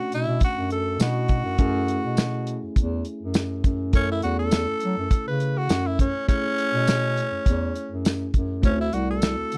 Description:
straight-eighth soul blues; 102 BPM; 4/4; swing 55% on 16ths; F# minor; A4 = 440 Hz
growling tenor saxophone; melody; 0.0-9.6 s; C#4 to B4; -29 LUFS; equal
bell-like tine electric piano; accompaniment; 0.0-9.6 s; A3 to A4; -34 LUFS; equal
dark bass clarinet; bass; 0.0-9.6 s; C2 to F#3; -29 LUFS; equal
warm soul drum kit; drums; 0.1-9.6 s; hi-hat, kick drum, snare drum, tambourine; -24 LUFS; equal
little or no reverb; dry, close 1970s-style studio recording; -24 LUFS; mono
0.0-9.6 A section
tenor saxophone solo 0.0-9.6
0.0 Bm7; 1.6 F#m7; 8.6 D7

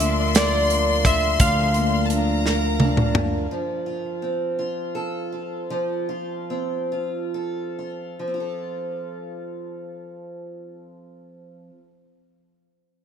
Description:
six-eight pop ballad; 42-57 BPM (dotted quarters); 6/8; straight; F major; A4 = 436 Hz
electric slide guitar; melody; 0.0-3.1 s; D5 to F5; -24 LUFS; left 1 dB; ping-pong delay
bright chamber violin section; second line; 0.0-3.2 s; A5 to C6; -27 LUFS; left 4 dB
picked acoustic archtop guitar; accompaniment; 0.0-11.9 s; D3 to Bb4; -27 LUFS; equal; lush chorus
tonewheel organ; sustained chords; 0.0-3.5 s; D3 to F4; -32 LUFS; right 2 dB; chorus vibrato, slow rotary speaker
fingered electric bass; bass; 0.0-3.5 s; D2; -23 LUFS; equal
modern studio drum kit; drums; 0.0-3.3 s; hi-hat, kick drum, snare drum, toms; -21 LUFS; right 1 dB
light reverb; bright 1980s-style digital production; -21 LUFS; side -8 dB against mid
0.0-3.5 A section; 3.5-8.3 B section; 8.3-13.0 C section
drum fill 2.5-3.5; slowing down 3.5-8.3
0.0 Bb/D; 3.5 F

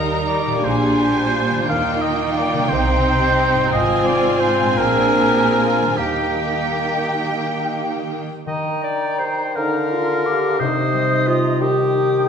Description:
classical; 47-61 BPM (dotted quarters); 6/8; rubato; Eb major; A4 = 438 Hz
dark symphonic violin section; melody; 0.0-8.3 s; G5 to Bb5; -28 LUFS; left 2 dB
clear clarinet; second line; 0.0-12.3 s; D4 to Eb5; -25 LUFS; left 2 dB
concert flute; second line; 0.0-12.3 s; G5 to Eb6; -27 LUFS; right 1 dB
warm oboe; second line; 0.0-12.3 s; G4 to G5; -22 LUFS; right 1 dB
warm symphonic violin section; second line; 0.0-7.9 s; C4 to Bb4; -28 LUFS; left 3 dB
rich symphonic viola section; accompaniment; 0.0-8.2 s; G3 to Ab4; -26 LUFS; right 2 dB
warm bassoon; accompaniment; 0.0-12.3 s; C3 to C4; -25 LUFS; right 2 dB
concert harp; arpeggios; 0.0-12.3 s; Ab2 to Eb5; -26 LUFS; left 3 dB
clear symphonic double bass section; bass; 0.0-6.8 s; Ab1 to Eb2; -28 LUFS; right 2 dB
rich symphonic cello section; bass; 0.0-8.2 s; Ab2 to Eb3; -26 LUFS; right 2 dB
dark French horn section; sustained chords; 9.6-12.3 s; Eb4 to G4; -22 LUFS; left 1 dB
wet recital hall reverb, RT60 1.6 s; recorded in a church or concert hall; -16 LUFS; side -7 dB against mid
0.0-8.5 A section; 8.5-12.3 A section
0.0 Eb; 0.6 Bb13; 1.7 Eb; 2.7 Cm; 3.7 Fm/Ab; 4.8 Bb9; 6.0 Eb; 10.6 Cm

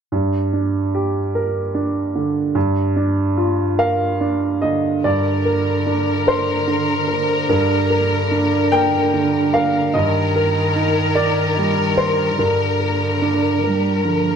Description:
neoclassical piano and strings; 49 BPM (dotted quarters); 6/8; rubato; G minor; A4 = 440 Hz
clear baby grand piano; accompaniment; 0.1-14.4 s; G2 to G5; -17 LUFS; right 2 dB
clear studio violin section; melody; 5.0-14.4 s; Bb4; -22 LUFS; left 4 dB
rich cello; second line; 5.1-14.4 s; D3 to G3; -24 LUFS; right 2 dB
little or no reverb; close, detailed microphones; -16 LUFS; side -7 dB against mid
0.1-5.0 A section; 5.0-14.4 B section
0.1 Gm; 2.5 Bb/G; 5.0 Gm; 9.9 Eb/G; 12.4 Gm

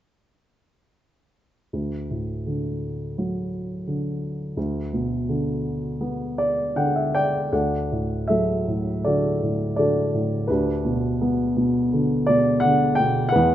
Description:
classical, lyrical solo piano; 83 BPM; 4/4; uneven beats, rubato; D major; A4 = 437 Hz
dark upright piano; solo; 1.7-13.5 s; D2 to G5; -21 LUFS; equal
light reverb; nothing above 7.8 kHz; -21 LUFS; side -12 dB against mid
1.7-7.5 A section; 7.5-13.5 B section
upright piano fill 6.4-7.5
1.7 D; 4.6 D69; 7.5 D; 10.5 G/D

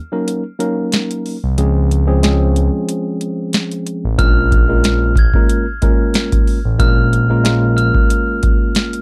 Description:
hip hop, boom-bap hip-hop; 92 BPM; 4/4; swing 56% on 16ths; Bb minor; A4 = 440 Hz
mellow tine electric piano; accompaniment; 0.1-9.0 s; F3 to Bb4; -21 LUFS; equal; high-pass filter, low-pass filter
booming analog drum machine; drums; 0.3-9.0 s; hi-hat, kick drum, snare drum; -17 LUFS; equal; overdrive
smooth gliding synth bass; bass; 1.4-7.9 s; A1 to Db2; -17 LUFS; equal; tube saturation
glockenspiel with hard plastic mallets; melody; 4.2-8.7 s; F6 to Ab6; -24 LUFS; equal; high-pass filter, low-pass filter
little or no reverb; dry, gritty hardware recording; -15 LUFS; mono
0.0-9.0 A section
break 0.0-4.2
0.0 Ebm7; 1.6 Dbmaj7; 4.2 Bbm7

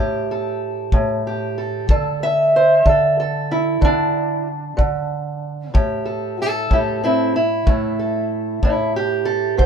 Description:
acoustic country blues, solo or duo; 62 BPM (dotted quarters); 12/8; straight; A4 = 440 Hz
fingerpicked steel-string acoustic guitar; melody; 0.0-9.7 s; A2 to E5; -18 LUFS; right 1 dB
kick drum; drums; 0.9-9.7 s; -17 LUFS; equal
light reverb; minimal, uncompressed stereo recording; -17 LUFS; side -7 dB against mid
0.0-9.7 A section
0.0 A7(no3); 1.9 D5; 5.7 A5

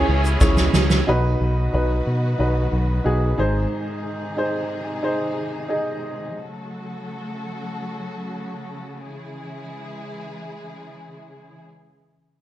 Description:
piano-driven pop; 91 BPM; 4/4; straight; C# minor; A4 = 439 Hz
clear upright piano; accompaniment; 0.0-6.4 s; G#2 to D#5; -24 LUFS; equal
warm studio string section; sustained chords; 0.0-11.6 s; B#2 to C#6; -32 LUFS; left 1 dB
cranked stack guitar; riff; 0.0-1.1 s; C#3 to G#4; -28 LUFS; right 4 dB; overdrive
picked electric bass; bass; 0.0-3.7 s; G#1 to B2; -20 LUFS; equal
soft-mallet drum kit; drums; 0.1-1.1 s; kick drum, ride cymbal, snare drum; -20 LUFS; equal
tube shaker; percussion; 0.2-1.1 s; -37 LUFS; left 7 dB
light reverb, small room ambience; dark, warm production; -20 LUFS; side -14 dB against mid
0.0-1.1 A section; 1.1-11.6 B section
drum fill 0.4-1.1
0.0 C#m; 1.1 B; 3.4 G#; 6.3 F#m; 9.0 C#m

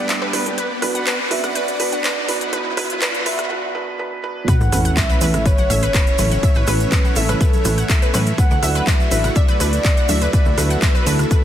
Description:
progressive house; 123 BPM; 4/4; straight; A4 = 441 Hz
soft octave-layered synth lead; melody; 0.0-11.4 s; A4 to F#5; -26 LUFS; left 1 dB; chorus, phaser, dub echo
supersaw pad; sustained chords; 0.0-11.4 s; A3 to G5; -29 LUFS; right 1 dB; sidechain pumping
wide unison pluck; arpeggios; 0.0-11.4 s; B4 to F#6; -26 LUFS; equal; analog chorus, sidechain pumping, dub echo
felt-muted upright piano; stabs; 0.0-11.3 s; F#2 to B4; -25 LUFS; right 3 dB; sidechain pumping, dub echo
riser and sub drop; sound effects; 0.1-6.4 s; -26 LUFS; equal
pop drum kit; drums; 0.1-11.4 s; handclaps, hi-hat, rim click; -24 LUFS; equal
airy dreamy lead; second line; 4.5-11.4 s; A4 to F#5; -30 LUFS; right 2 dB; chorus, sidechain pumping, dub echo
electronic kick drum; drums; 4.5-11.4 s; -16 LUFS; equal
tube shaker; percussion; 4.5-11.4 s; -30 LUFS; right 1 dB
plucky analog bass; bass; 4.6-11.3 s; A1 to A2; -19 LUFS; equal; sidechain pumping
congas; percussion; 5.0-11.3 s; -30 LUFS; equal
light reverb; dense, heavily limited modern master, high-pass filter; -15 LUFS; side -10 dB against mid
0.0-4.5 A section; 4.5-11.4 B section
build-up 0.0-4.5; riser 0.1-3.5; filter sweep on felt piano 0.0-4.5; break 3.5-4.5; drop 4.5-11.4; impact 4.5-6.4
0.0 G; 0.6 Bm; 4.5 A; 8.4 Dadd9

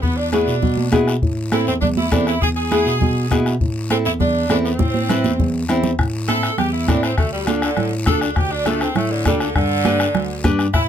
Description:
latin, cumbia; 202 BPM; 4/4; straight; A harmonic minor, A minor from 6.0 s; A4 = 439 Hz
edgy saxophone section; melody; 0.0-10.9 s; D3 to A4; -22 LUFS; right 1 dB
overdriven tine electric piano; bass; 0.0-10.9 s; D2 to B2; -21 LUFS; equal
bombo; percussion; 0.0-10.9 s; -21 LUFS; left 2 dB
guiro; percussion; 0.0-10.9 s; -33 LUFS; left 6 dB
nylon-string guitar; accompaniment; 0.3-10.7 s; B3 to C5; -21 LUFS; left 1 dB
congas; percussion; 0.3-10.6 s; -24 LUFS; right 7 dB
light reverb; -16 LUFS; side -9 dB against mid
0.0-6.0 A section; 6.0-10.9 B section
drum fill 4.8-6.0; saxophone section solo 6.0-10.9
0.0 E7; 1.2 Am; 2.4 E; 3.6 Am; 7.2 Dm; 9.6 G

